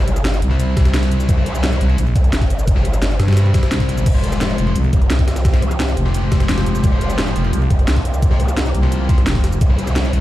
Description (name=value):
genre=dark technical drum and bass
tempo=173 BPM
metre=4/4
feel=straight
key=F harmonic minor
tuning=A4 = 440 Hz
part: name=sludgy distorted guitar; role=stabs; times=0.0-10.2 s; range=G3 to C5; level=-24 LUFS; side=left 2 dB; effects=overdrive, digital delay
part: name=growl bass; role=bass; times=0.0-10.1 s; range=F1 to C2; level=-18 LUFS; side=equal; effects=chorus, overdrive, sidechain pumping
part: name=drum and bass drum kit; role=drums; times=0.1-10.2 s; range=crash cymbal, hi-hat, rim click, shaker, snare drum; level=-24 LUFS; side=equal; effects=overdrive
part: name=jungle sampler-style drum kit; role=drums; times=0.1-10.2 s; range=hi-hat, snare drum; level=-32 LUFS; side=equal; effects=none
part: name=growling FM bass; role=bass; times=0.4-10.2 s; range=F1 to G2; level=-16 LUFS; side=equal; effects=none
part: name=electronic kick drum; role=drums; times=0.8-9.7 s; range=none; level=-15 LUFS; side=equal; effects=none
part: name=sweeping resonant pad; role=sustained chords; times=4.1-10.2 s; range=C3 to G4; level=-26 LUFS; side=right 1 dB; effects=chorus, sidechain pumping
room=digital ambience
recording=played on a big sound system in a bare room, large studio reverb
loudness=-14 LUFS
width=side -15 dB against mid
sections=0.0-10.2 A section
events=none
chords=0.0 C; 4.1 Fm; 9.6 C